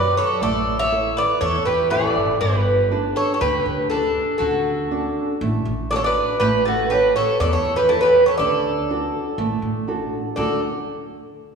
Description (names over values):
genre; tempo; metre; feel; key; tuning
greek folk, Greek bouzouki band; 121 BPM; 4/4; straight; D major; A4 = 440 Hz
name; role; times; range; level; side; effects
Greek bouzouki; melody; 0.0-10.6 s; A4 to E5; -19 LUFS; right 1 dB; none
bowl-back mandolin; second line; 0.0-10.6 s; D4 to C#5; -26 LUFS; left 3 dB; none
nylon-string guitar; accompaniment; 0.0-10.6 s; D3 to E5; -26 LUFS; right 3 dB; none
upright bass; bass; 0.0-10.6 s; G1 to F#2; -27 LUFS; equal; none
room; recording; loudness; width
wet concert hall reverb, RT60 2.3 s; recorded in a church or concert hall, small room ambience; -18 LUFS; side -5 dB against mid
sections
0.0-10.4 A section; 10.4-11.6 B section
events
none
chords
0.4 A; 2.4 G; 4.4 D; 6.4 A7; 8.4 D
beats
| 0.42 0.92 1.42 1.92 | 2.42 2.92 3.42 3.92 | 4.41 4.91 5.41 5.91 | 6.40 6.90 7.40 7.89 | 8.39 8.89 9.38 9.88 | 10.37